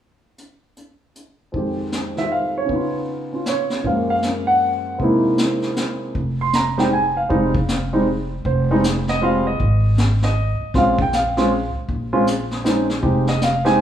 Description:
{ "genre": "jazz piano trio", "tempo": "157 BPM", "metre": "3/4", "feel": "swing 64% on 8ths", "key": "F minor from 6.2 s", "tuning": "A4 = 441 Hz", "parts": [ { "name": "vintage brush drum kit", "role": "drums", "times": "0.4-13.8 s", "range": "brushed snare drum, hi-hat, kick drum, snare drum", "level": "-25 LUFS", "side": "left 2 dB", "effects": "none" }, { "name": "warm concert grand piano", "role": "melody", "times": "1.5-13.8 s", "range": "F2 to C6", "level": "-19 LUFS", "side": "right 1 dB", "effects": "none" }, { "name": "upright bass", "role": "bass", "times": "6.1-13.8 s", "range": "F1 to Bb1", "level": "-21 LUFS", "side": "equal", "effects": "none" } ], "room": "moderate large studio reverb, RT60 1.3 s", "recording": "band playing live in one room, small room ambience", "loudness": "-17 LUFS", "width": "side -10 dB against mid", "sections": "0.4-1.5 A section; 1.5-6.2 B section; 6.2-13.8 C section", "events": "none", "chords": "0.4 N.C.; 1.5 Fm9; 2.7 Db9; 3.9 Gbmaj9; 5.0 C7alt; 6.2 Fm7; 10.7 Bbm7; 13.0 Fm7", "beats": "| 0.39 0.77 1.16 | 1.54 1.93 2.31 | 2.70 3.08 3.46 | 3.85 4.24 4.62 | 5.00 5.39 5.77 | 6.16 6.54 6.92 | 7.31 7.69 8.07 | 8.45 8.84 9.22 | 9.60 9.98 10.36 | 10.74 11.13 11.51 | 11.89 12.27 12.65 | 13.03 13.41 13.79" }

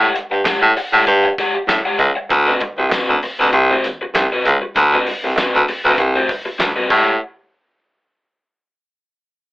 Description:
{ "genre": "funk", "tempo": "98 BPM", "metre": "4/4", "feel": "straight", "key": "unclear", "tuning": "A4 = 441 Hz", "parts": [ { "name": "raw garage guitar", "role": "accompaniment", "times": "0.0-7.1 s", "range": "C4 to F#5", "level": "-20 LUFS", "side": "left 1 dB", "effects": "overdrive" }, { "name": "bright baritone saxophone", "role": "bass", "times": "0.0-7.2 s", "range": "C2 to A2", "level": "-13 LUFS", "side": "equal", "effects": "none" }, { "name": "warm soul drum kit", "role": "drums", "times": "0.2-7.1 s", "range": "crash cymbal, handclaps, hi-hat, kick drum, snare drum", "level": "-22 LUFS", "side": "equal", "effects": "none" }, { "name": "congas", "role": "percussion", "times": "0.2-7.2 s", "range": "none", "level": "-30 LUFS", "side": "right 2 dB", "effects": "none" }, { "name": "tambourine", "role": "percussion", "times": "0.5-7.2 s", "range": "none", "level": "-33 LUFS", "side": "equal", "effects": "none" } ], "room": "moderate small room ambience, RT60 0.5 s", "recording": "telephone sound", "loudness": "-14 LUFS", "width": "side -19 dB against mid", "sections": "0.0-7.2 A section; 7.2-9.5 B section", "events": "none", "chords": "0.0 A6; 2.3 D6; 6.9 A6; 7.2 N.C.", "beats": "0.46 1.08 1.69 | 2.30 2.92 3.53 4.15 | 4.76 5.37 5.99 6.60" }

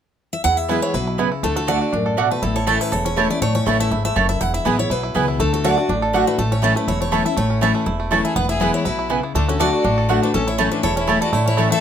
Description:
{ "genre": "bluegrass", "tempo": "243 BPM", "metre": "4/4", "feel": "swing 53% on 8ths", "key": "A major", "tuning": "A4 = 441 Hz", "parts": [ { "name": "picked steel-string acoustic guitar", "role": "melody", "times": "0.3-11.8 s", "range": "A4 to F#5", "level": "-24 LUFS", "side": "equal", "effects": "none" }, { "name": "bluegrass banjo", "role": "melody", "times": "0.4-11.8 s", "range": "A3 to A4", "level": "-26 LUFS", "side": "right 4 dB", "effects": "none" }, { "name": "upright bass", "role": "bass", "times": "0.4-11.7 s", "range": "E1 to E2", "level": "-23 LUFS", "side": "equal", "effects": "none" }, { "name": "picked steel-string acoustic guitar", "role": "accompaniment", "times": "0.5-11.8 s", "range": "E2 to F#4", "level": "-22 LUFS", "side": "left 4 dB", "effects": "none" }, { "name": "mandolin", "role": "stabs", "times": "0.7-11.7 s", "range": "A3 to A5", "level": "-20 LUFS", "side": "right 7 dB", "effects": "none" }, { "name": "clear fiddle", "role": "second line", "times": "8.2-11.8 s", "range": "C#4 to B4", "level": "-27 LUFS", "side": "left 5 dB", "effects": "none" } ], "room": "light reverb", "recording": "close, detailed microphones", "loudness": "-16 LUFS", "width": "side -9 dB against mid", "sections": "0.4-11.8 A section", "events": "none", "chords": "0.4 E; 1.4 D; 2.4 A; 4.4 E; 5.4 D; 6.4 A; 8.4 E; 9.3 D; 10.3 A", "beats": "0.20 | 0.45 0.69 0.94 1.19 | 1.44 1.69 1.93 2.18 | 2.43 2.67 2.92 3.17 | 3.42 3.67 3.91 4.16 | 4.41 4.65 4.90 5.15 | 5.40 5.64 5.89 6.14 | 6.38 6.63 6.88 7.12 | 7.37 7.62 7.87 8.11 | 8.36 8.61 8.85 9.10 | 9.35 9.59 9.84 10.09 | 10.34 10.58 10.83 11.08 | 11.33 11.57" }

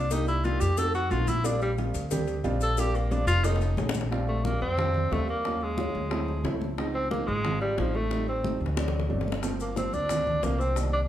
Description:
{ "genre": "Afro-Cuban jazz", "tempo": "180 BPM", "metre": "4/4", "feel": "straight", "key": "Bb major", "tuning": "A4 = 442 Hz", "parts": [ { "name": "breathy tenor saxophone", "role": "melody", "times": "0.0-11.0 s", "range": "F3 to A4", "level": "-29 LUFS", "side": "equal", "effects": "none" }, { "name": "upright bass", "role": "bass", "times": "0.0-11.1 s", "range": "F1 to F2", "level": "-29 LUFS", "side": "equal", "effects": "none" }, { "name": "warm baby grand piano", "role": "accompaniment", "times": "0.1-11.0 s", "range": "Eb3 to G#4", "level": "-33 LUFS", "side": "right 2 dB", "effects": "none" }, { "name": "congas", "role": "percussion", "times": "0.1-11.1 s", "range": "none", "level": "-37 LUFS", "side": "equal", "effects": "none" }, { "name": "cowbell and bongos", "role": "percussion", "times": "0.1-10.9 s", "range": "none", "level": "-36 LUFS", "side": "left 4 dB", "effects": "none" }, { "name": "maracas", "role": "percussion", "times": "0.1-4.1, 9.4-10.9 s", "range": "none", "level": "-42 LUFS", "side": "left 6 dB", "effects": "none" } ], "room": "wet large studio reverb, RT60 0.9 s", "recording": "heard from further back in the room", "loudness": "-25 LUFS", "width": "side -12 dB against mid", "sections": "0.0-4.1 A section; 4.1-11.1 B section", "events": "tenor saxophone solo 0.0-4.1; drum fill 3.4-4.1, 8.1-9.4", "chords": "0.1 Cm7; 0.8 F7b9; 1.4 Bb69; 3.4 F7alt; 4.1 Bb69; 5.4 Ebm9; 6.1 D9; 6.8 Dbmaj9; 8.1 Am7b5; 8.8 D7; 9.4 Gm11", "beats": "| 0.11 0.45 0.78 1.11 | 1.45 1.78 2.11 2.45 | 2.78 3.11 3.45 3.78 | 4.11 4.45 4.78 5.11 | 5.45 5.78 6.11 6.45 | 6.78 7.11 7.44 7.78 | 8.11 8.44 8.77 9.11 | 9.44 9.77 10.10 10.43 | 10.76" }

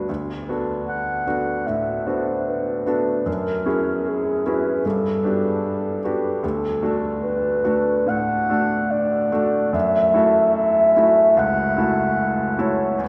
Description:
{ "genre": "classical, impressionist duo for clarinet and grand piano", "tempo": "75 BPM", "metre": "4/4", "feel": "rubato", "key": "unclear", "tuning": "A4 = 440 Hz", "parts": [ { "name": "dark clarinet", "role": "melody", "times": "0.0-13.0 s", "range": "G4 to F#5", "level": "-23 LUFS", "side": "equal", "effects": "none" }, { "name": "bright grand piano", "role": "accompaniment", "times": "0.0-13.1 s", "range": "C#2 to B4", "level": "-25 LUFS", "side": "equal", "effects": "none" } ], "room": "wet cathedral reverb, RT60 6.6 s", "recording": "recorded in a church or concert hall", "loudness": "-21 LUFS", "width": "mono", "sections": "0.0-13.1 A section", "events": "none", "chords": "0.1 D6; 3.3 F#9; 4.8 Gmaj7; 6.4 D6; 9.7 F#m7", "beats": "| 0.09 0.88 1.67 2.47 | 3.27 4.06 4.85 5.63 | 6.43 7.22 8.09 8.92 | 9.74 10.56 11.38 12.19 | 13.01" }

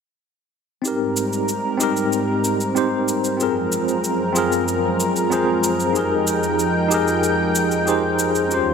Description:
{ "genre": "sunset chillout", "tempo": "94 BPM", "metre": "4/4", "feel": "straight", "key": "Ab major", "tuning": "A4 = 440 Hz", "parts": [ { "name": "bright tine electric piano", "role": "accompaniment", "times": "0.8-8.7 s", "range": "C4 to C5", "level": "-20 LUFS", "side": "moving between left 4 dB and right 3 dB", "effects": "medium stereo tremolo, auto-pan, ping-pong delay" }, { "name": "lush unison pad", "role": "sustained chords", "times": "0.8-8.7 s", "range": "Eb2 to G5", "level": "-21 LUFS", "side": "equal", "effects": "chorus" }, { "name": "cabasa", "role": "drums", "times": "0.8-8.6 s", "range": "none", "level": "-27 LUFS", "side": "equal", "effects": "studio reverb" } ], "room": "moderate lush hall reverb, RT60 2.1 s", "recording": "none", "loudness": "-18 LUFS", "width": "side -6 dB against mid", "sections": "0.8-8.7 A section", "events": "filter sweep on analog synth pad 0.8-8.7", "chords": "0.8 Abmaj9; 3.4 Gbmaj9#11; 6.0 Fm11", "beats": "| 0.85 1.49 2.13 2.76 | 3.40 4.04 4.68 5.32 | 5.96 6.59 7.23 7.87 | 8.51" }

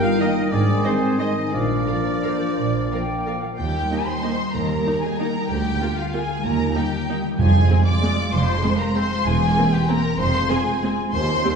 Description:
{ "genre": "classical, orchestral ballroom waltz", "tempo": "166-205 BPM", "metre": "3/4", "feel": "rubato", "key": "Eb major", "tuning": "A4 = 439 Hz", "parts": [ { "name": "clear clarinet", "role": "second line", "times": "0.0-3.4 s", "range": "Ab4 to Bb4", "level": "-31 LUFS", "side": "left 2 dB", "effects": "none" }, { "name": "clear oboe", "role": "second line", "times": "0.0-3.4 s", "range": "C5 to F5", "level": "-30 LUFS", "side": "right 2 dB", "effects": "none" }, { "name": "flute section", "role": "second line", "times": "0.0-3.6 s", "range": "C5 to Ab5", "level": "-32 LUFS", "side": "right 1 dB", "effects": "none" }, { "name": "rich symphonic violin section", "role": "second line", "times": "0.0-11.6 s", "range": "F4 to F5", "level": "-30 LUFS", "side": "left 2 dB", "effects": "none" }, { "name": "mellow bassoon", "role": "accompaniment", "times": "0.0-3.4 s", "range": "Eb3 to F3", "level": "-29 LUFS", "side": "right 1 dB", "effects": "none" }, { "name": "dark French horn section", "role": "sustained chords", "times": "0.0-3.4 s", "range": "C4 to F4", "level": "-25 LUFS", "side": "left 3 dB", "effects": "none" }, { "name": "concert harp", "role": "arpeggios", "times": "0.0-11.6 s", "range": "G2 to C6", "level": "-26 LUFS", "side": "left 3 dB", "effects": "none" }, { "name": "dark symphonic violin section", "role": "melody", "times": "0.2-11.6 s", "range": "F5 to D6", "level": "-26 LUFS", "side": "left 2 dB", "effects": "none" }, { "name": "warm symphonic viola section", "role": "accompaniment", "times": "0.2-11.5 s", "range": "G3 to Eb5", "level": "-28 LUFS", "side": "right 2 dB", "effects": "none" }, { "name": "bright trombone section", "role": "sustained chords", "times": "0.2-3.4 s", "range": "Eb3 to Bb3", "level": "-32 LUFS", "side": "right 2 dB", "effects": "none" }, { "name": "rich chamber double bass section", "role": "bass", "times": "0.5-11.4 s", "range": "E1 to Eb2", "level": "-25 LUFS", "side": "right 3 dB", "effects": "none" }, { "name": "warm symphonic cello section", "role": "bass", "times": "0.5-11.4 s", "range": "D2 to Bb2", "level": "-27 LUFS", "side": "right 4 dB", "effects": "none" }, { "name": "timpani", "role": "percussion", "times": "7.4-7.8 s", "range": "F2", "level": "-24 LUFS", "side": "right 2 dB", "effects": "none" } ], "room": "wet scoring stage reverb, RT60 1.6 s", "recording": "heard from further back in the room, nothing above 10.4 kHz", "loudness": "-18 LUFS", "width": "side -6 dB against mid", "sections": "0.0-3.6 A section; 3.6-11.6 B section", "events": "none", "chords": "0.0 Eb/G; 0.5 Ab; 1.5 Bb; 3.6 Eb; 5.5 Bb7/D; 6.4 Eb; 7.4 Fm; 9.3 C7/E; 10.2 Fm", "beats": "0.20 | 0.52 0.85 1.20 | 1.53 1.88 2.23 | 2.57 2.91 3.26 | 3.59 3.91 4.24 | 4.55 4.86 5.19 | 5.50 5.81 6.14 | 6.45 6.76 7.08 | 7.39 7.70 8.02 | 8.33 8.63 8.95 | 9.26 9.57 9.89 | 10.20 10.51 10.83 | 11.13 11.44" }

